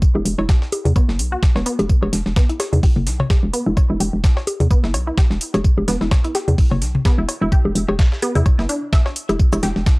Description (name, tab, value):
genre	minimal techno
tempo	128 BPM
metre	4/4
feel	swing 56% on 16ths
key	E minor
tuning	A4 = 440 Hz
part	breakbeat sampler-style drum kit	drums	0.0-10.0 s	hi-hat, snare drum, tambourine	-31 LUFS	equal	sidechain pumping on perc, high-pass filter on perc, high-pass filter on snare, sidechain pumping on hats, high-pass filter on hats
part	electronic kick drum	drums	0.0-10.0 s	none	-14 LUFS	equal	none
part	hollow knocking FM bass	bass	0.1-9.8 s	E1 to E2	-19 LUFS	equal	sidechain pumping
part	resonant blip pluck	riff	0.2-9.7 s	B3 to E5	-26 LUFS	equal	chorus, sidechain pumping, analog delay
part	electronic bongos, cowbell and toms	percussion	0.2-9.6 s	none	-23 LUFS	left 1 dB	analog delay
part	electronic hi-hat and cabasa	drums	0.3-9.7 s	none	-27 LUFS	right 1 dB	none
room	little or no reverb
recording	dry, gritty hardware recording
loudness	-15 LUFS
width	side -25 dB against mid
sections	0.0-10.0 A section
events	filter sweep on synth pluck 0.0-10.0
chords	0.0 E5